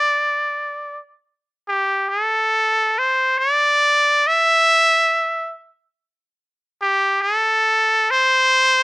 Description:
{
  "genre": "hawaiian",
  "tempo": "free time",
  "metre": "none",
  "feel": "none",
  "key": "unclear",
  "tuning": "A4 = 439 Hz",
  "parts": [
    { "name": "trumpet with straight mute", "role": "solo", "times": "0.0-8.8 s", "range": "G4 to E5", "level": "-15 LUFS", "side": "equal", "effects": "none" }
  ],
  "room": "little or no reverb",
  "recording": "recorded outdoors, with no room sound",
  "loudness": "-15 LUFS",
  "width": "side -24 dB against mid",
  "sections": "0.0-1.7 A section; 1.7-8.8 B section",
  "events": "none",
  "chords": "none",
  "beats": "free time"
}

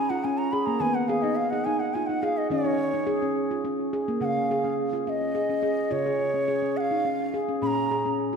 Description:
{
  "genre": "world meditative, meditative tuned percussion",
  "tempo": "70 BPM (dotted quarters)",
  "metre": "6/8",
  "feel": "straight",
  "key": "unclear",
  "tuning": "A4 = 439 Hz",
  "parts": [
    { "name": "bright reedy bansuri", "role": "melody", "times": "0.0-8.2 s", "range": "Db5 to Cb6", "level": "-28 LUFS", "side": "equal", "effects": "analog delay" },
    { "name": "handpan", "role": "arpeggios", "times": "0.0-8.4 s", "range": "Bb2 to Ab4", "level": "-26 LUFS", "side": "equal", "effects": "analog delay" }
  ],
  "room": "wet echo chamber reverb, RT60 2.1 s",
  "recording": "echo-heavy mix",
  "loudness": "-24 LUFS",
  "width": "side -6 dB against mid",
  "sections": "0.0-4.2 A section; 4.2-8.4 B section",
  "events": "none",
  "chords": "0.0 Db/Eb; 0.8 Abm/Eb; 2.5 N.C.; 4.2 Db; 7.6 Bbm",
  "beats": "| 0.81 1.66 | 2.51 3.36 | 4.21 5.06 | 5.91 6.76 | 7.62"
}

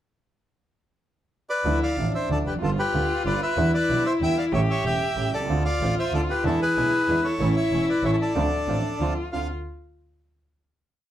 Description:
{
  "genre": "tango",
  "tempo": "188 BPM",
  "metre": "3/4",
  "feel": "rubato",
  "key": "D dorian",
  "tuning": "A4 = 441 Hz",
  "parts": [
    { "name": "bandoneon", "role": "melody", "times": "1.5-9.5 s", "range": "E4 to G5", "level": "-26 LUFS", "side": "equal", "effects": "none" },
    { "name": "warm cello", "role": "second line", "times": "1.6-9.5 s", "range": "D4 to G4", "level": "-26 LUFS", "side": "left 3 dB", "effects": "none" },
    { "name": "warm concert grand piano", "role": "accompaniment", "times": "1.6-9.5 s", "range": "E1 to F4", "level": "-30 LUFS", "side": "right 4 dB", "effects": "none" },
    { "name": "clear double bass", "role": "bass", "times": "1.6-9.5 s", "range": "E1 to E2", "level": "-27 LUFS", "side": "right 1 dB", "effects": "none" },
    { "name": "bandoneon", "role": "stabs", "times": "5.5-9.5 s", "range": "G#3 to F4", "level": "-36 LUFS", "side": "right 4 dB", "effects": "none" }
  ],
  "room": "light reverb",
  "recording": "none",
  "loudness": "-21 LUFS",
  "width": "side -12 dB against mid",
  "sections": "0.7-1.6 pickup bar; 1.6-9.3 A section; 9.3-10.3 final chord",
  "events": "none",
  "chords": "0.7 N.C.; 1.6 Dmadd9; 2.6 G7; 3.6 Em7; 4.5 A7; 5.5 Dm7; 6.4 E7; 7.4 A; 8.3 Dm7",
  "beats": "| 0.68 1.00 1.32 | 1.64 1.97 2.29 | 2.62 2.94 3.25 | 3.57 3.89 4.21 | 4.52 4.84 5.16 | 5.48 5.80 6.13 | 6.44 6.76 7.08 | 7.39 7.71 8.03 | 8.35 8.67 9.00 | 9.32"
}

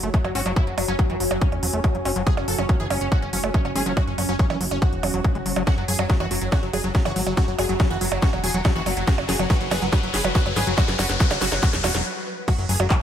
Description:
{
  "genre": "psychedelic trance",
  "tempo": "141 BPM",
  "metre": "4/4",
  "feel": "straight",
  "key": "unclear",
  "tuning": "A4 = 440 Hz",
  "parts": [
    { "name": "pulsing gated texture", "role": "sustained chords", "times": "0.0-13.0 s", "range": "F#3 to B4", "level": "-31 LUFS", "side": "left 1 dB", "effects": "chorus, built-in reverb, sidechain pumping" },
    { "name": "overdriven acid bass", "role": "riff", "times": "0.0-13.0 s", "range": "E3 to C#4", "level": "-30 LUFS", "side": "moving between left 6 dB and right 4 dB", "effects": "distortion, auto-pan, sidechain pumping, tape echo" },
    { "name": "fat analog bass", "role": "bass", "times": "0.0-12.9 s", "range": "E1 to G#1", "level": "-28 LUFS", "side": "equal", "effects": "none" },
    { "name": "techno drum kit", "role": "drums", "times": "0.0-13.0 s", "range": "crash cymbal, handclaps, hi-hat, percussion blips, snare drum", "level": "-27 LUFS", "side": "right 3 dB", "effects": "overdrive, high-pass filter on hats, studio reverb, high-pass filter on perc, high-pass filter on snare, high-pass filter on cymbals" },
    { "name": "warbly tape-like pad", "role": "texture", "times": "0.0-12.1 s", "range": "F#4 to G#5", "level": "-35 LUFS", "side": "right 2 dB", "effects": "chorus, built-in reverb, phaser, sidechain pumping" },
    { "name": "supersaw stab", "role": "melody", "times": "0.1-13.0 s", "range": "F#3 to A4", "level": "-29 LUFS", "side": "equal", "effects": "phaser, sidechain pumping, digital delay" },
    { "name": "electronic kick drum", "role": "drums", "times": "0.1-13.0 s", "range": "none", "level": "-20 LUFS", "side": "equal", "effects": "studio reverb" },
    { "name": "riser", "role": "sound effects", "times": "7.3-12.1 s", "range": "none", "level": "-30 LUFS", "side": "left 3 dB", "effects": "none" }
  ],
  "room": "light reverb",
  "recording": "none",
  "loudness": "-19 LUFS",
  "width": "side -9 dB against mid",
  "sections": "0.0-12.5 A section",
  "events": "build-up 0.0-12.5; drum fill 5.7-12.1; riser 7.3-12.1; stop 12.1-12.5",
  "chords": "0.0 F#5",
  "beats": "0.14 | 0.56 0.99 1.42 1.84 | 2.27 2.69 3.12 3.54 | 3.97 4.39 4.82 5.25 | 5.67 6.10 6.52 6.95 | 7.37 7.80 8.22 8.65 | 9.07 9.50 9.93 10.35 | 10.78 11.20 11.63 12.05 | 12.48 12.90"
}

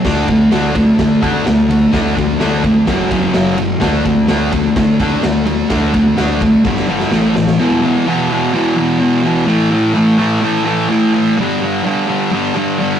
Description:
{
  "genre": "garage rock duo or trio",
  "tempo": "127 BPM",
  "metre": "4/4",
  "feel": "straight",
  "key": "unclear",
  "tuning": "A4 = 440 Hz",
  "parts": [
    { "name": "thick fuzz guitar", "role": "riff", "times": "0.0-13.0 s", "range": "E2 to D4", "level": "-12 LUFS", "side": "equal", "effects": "distortion" },
    { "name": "growling picked electric bass", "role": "bass", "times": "0.0-7.5 s", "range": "F#1 to D3", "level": "-21 LUFS", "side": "equal", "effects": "overdrive" },
    { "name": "raw garage drum kit", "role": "drums", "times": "0.0-7.6 s", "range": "crash cymbal, kick drum, ride cymbal, snare drum", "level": "-19 LUFS", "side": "equal", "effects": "none" }
  ],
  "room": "wet small room reverb, RT60 0.5 s",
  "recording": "rough rehearsal-room recording, warm saturation",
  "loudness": "-11 LUFS",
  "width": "side -9 dB against mid",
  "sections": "0.0-7.6 A section; 7.6-13.0 B section",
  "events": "drum fill 6.7-7.6",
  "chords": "0.1 D5; 2.9 F#5; 3.8 D5; 6.7 G5; 7.1 A5; 7.6 E5; 9.5 A5; 11.4 G5",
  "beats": "| 0.05 0.52 0.99 1.47 | 1.94 2.41 2.88 3.35 | 3.82 4.29 4.76 5.24 | 5.71 6.18 6.65 7.12 | 7.59 8.07 8.54 9.01 | 9.48 9.95 10.43 10.90 | 11.37 11.85 12.32 12.79"
}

